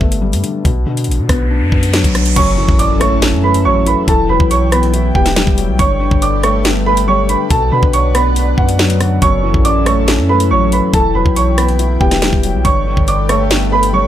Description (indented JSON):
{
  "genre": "hip hop, drill",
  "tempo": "140 BPM",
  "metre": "4/4",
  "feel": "half-time",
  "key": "F# phrygian",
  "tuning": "A4 = 441 Hz",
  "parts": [
    { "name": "felt-muted upright piano", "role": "accompaniment", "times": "0.0-14.1 s", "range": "F#2 to E4", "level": "-18 LUFS", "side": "left 4 dB", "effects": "none" },
    { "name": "long sustained 808-style bass", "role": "bass", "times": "0.0-14.1 s", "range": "E1 to B2", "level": "-16 LUFS", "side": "equal", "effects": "none" },
    { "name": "drill drum kit", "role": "drums", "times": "0.0-13.9 s", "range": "crash cymbal, hi-hat, kick drum, rim click, snare drum", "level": "-16 LUFS", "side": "equal", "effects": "none" },
    { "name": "riser and impact", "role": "sound effects", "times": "1.3-4.1 s", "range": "none", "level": "-24 LUFS", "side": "right 1 dB", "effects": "none" },
    { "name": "dark grand piano", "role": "melody", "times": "2.4-14.1 s", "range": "F#4 to D6", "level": "-16 LUFS", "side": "right 3 dB", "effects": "none" },
    { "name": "airy breathy pad", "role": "sustained chords", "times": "2.4-14.1 s", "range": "E3 to G5", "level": "-22 LUFS", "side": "right 1 dB", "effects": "chorus" }
  ],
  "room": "light reverb",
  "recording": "none",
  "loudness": "-10 LUFS",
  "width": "side -11 dB against mid",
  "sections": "0.0-2.4 A section; 2.4-14.1 B section",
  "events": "break 0.0-2.4; riser 1.3-2.4; impact 2.4-4.1",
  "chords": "0.0 Gadd9; 0.7 Bm; 2.4 F#m7; 4.1 Emadd9; 5.8 Gadd9; 7.5 Bm; 9.2 F#m7; 10.9 Emadd9; 12.7 Gadd9"
}